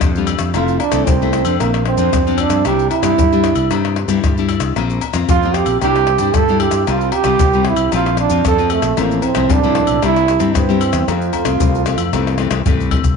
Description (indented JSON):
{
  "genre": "samba and choro",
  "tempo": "114 BPM",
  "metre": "4/4",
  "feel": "straight",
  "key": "F major",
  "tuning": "A4 = 440 Hz",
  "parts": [
    { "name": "nylon-string guitar", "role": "accompaniment", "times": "0.0-13.2 s", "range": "F2 to F4", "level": "-19 LUFS", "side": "left 10 dB", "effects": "none" },
    { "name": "fretless electric bass", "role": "bass", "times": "0.0-13.2 s", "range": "F1 to G2", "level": "-20 LUFS", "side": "equal", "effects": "none" },
    { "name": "maracas, surdo, pandeiro, tamborim and agogo bells", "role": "percussion", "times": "0.0-13.2 s", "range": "none", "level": "-19 LUFS", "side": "left 4 dB", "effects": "none" },
    { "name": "warm trombone", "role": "second line", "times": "0.5-12.7 s", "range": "A3 to A4", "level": "-16 LUFS", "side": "right 8 dB", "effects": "none" }
  ],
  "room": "wet echo chamber reverb, RT60 1.4 s, small room ambience",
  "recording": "1960s-style stereo with parts hard left and right, nothing above 10.3 kHz",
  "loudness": "-13 LUFS",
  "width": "side -5 dB against mid",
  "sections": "0.0-13.2 A section",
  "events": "trombone solo 0.0-13.2; drum fill 12.5-13.2",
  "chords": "0.0 Bb6 (rootless); 0.6 Fmaj7; 1.6 Bbadd9; 2.7 Cadd9; 4.8 Bbsus2; 5.8 Cadd9; 6.9 Fsus2/C; 7.9 Bbsus2; 9.0 Fmaj7/A; 10.0 C; 11.1 Fmaj7",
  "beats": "0.02 | 0.55 1.08 1.60 2.13 | 2.66 3.18 3.71 4.24 | 4.76 5.29 5.82 6.34 | 6.87 7.40 7.92 8.45 | 8.97 9.50 10.03 10.55 | 11.08 11.61 12.13 12.66"
}